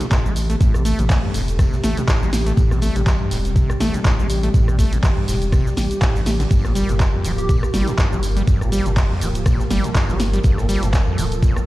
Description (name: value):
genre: acid house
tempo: 122 BPM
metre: 4/4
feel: swing 56% on 16ths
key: A phrygian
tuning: A4 = 440 Hz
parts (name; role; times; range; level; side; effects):
- warm analog pad; sustained chords; 0.0-11.7 s; C3 to A4; -27 LUFS; equal; chorus, sidechain pumping
- acid bass, saw; riff; 0.0-11.6 s; F2 to A3; -24 LUFS; equal; overdrive, analog delay
- open jazz drum kit; drums; 0.0-11.6 s; hi-hat, snare drum, tambourine; -38 LUFS; right 1 dB; none
- punchy analog drum machine; drums; 0.0-11.7 s; handclaps, hi-hat, rim click, shaker, snare drum; -26 LUFS; equal; none
- electronic kick drum; drums; 0.1-11.5 s; none; -17 LUFS; equal; none
- saturated sub bass; bass; 0.3-11.5 s; D1 to A1; -21 LUFS; equal; sidechain pumping
- plucky unison lead; melody; 7.4-7.9 s; G4; -30 LUFS; right 1 dB; analog delay
room: digital ambience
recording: played on a big sound system in a bare room, large studio reverb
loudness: -16 LUFS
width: side -17 dB against mid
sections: 0.0-11.7 A section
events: none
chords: 0.0 Am7; 6.5 Gm7